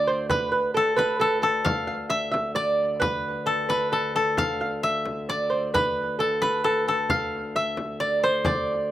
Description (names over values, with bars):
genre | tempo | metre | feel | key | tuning
medieval dance | 132 BPM | 3/4 | straight | D dorian | A4 = 441 Hz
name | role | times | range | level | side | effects
koto | melody | 0.0-8.9 s | A4 to F5 | -25 LUFS | left 2 dB | none
lute | second line | 0.0-8.9 s | A4 to F5 | -26 LUFS | right 3 dB | none
pedal harmonium | drone | 0.0-8.9 s | D2 | -35 LUFS | left 2 dB | none
frame drum | percussion | 0.3-8.8 s | none | -30 LUFS | left 1 dB | none
room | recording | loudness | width
little or no reverb | recorded outdoors, with no room sound | -22 LUFS | side -13 dB against mid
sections
0.0-8.9 A section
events
none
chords
none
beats
| 0.29 0.74 1.20 | 1.65 2.11 2.56 | 3.02 3.47 3.92 | 4.38 4.83 5.28 | 5.74 6.19 6.64 | 7.09 7.54 8.00 | 8.45 8.90